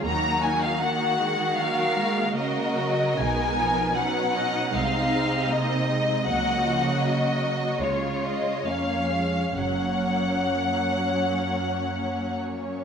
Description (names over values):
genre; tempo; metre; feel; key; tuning
classical, slow romantic movement for string orchestra; 62-81 BPM; 4/4; rubato; F# major; A4 = 440 Hz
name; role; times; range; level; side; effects
warm symphonic violin section; second line; 0.0-12.8 s; C#4 to D#5; -29 LUFS; equal; none
warm symphonic viola section; accompaniment; 0.0-12.8 s; E#3 to C#4; -30 LUFS; right 3 dB; none
rich symphonic cello section; bass; 0.0-12.8 s; E#2 to D#3; -30 LUFS; right 3 dB; none
warm symphonic violin section; melody; 0.1-12.4 s; C#5 to A#5; -26 LUFS; left 3 dB; none
rich symphonic double bass section; bass; 0.1-10.5 s; F#1 to D#2; -35 LUFS; right 3 dB; none
room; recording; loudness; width
wet concert hall reverb, RT60 2.0 s; none; -22 LUFS; side -7 dB against mid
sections
0.0-12.8 A section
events
none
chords
0.1 D#m7; 3.2 G#m7/B; 4.7 G#/B#; 6.3 F#/C#; 7.8 C#; 9.6 F#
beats
| 0.07 0.83 1.60 2.36 | 3.19 3.96 4.73 5.51 | 6.29 7.03 7.82 8.66 | 9.57 10.53 11.50 12.40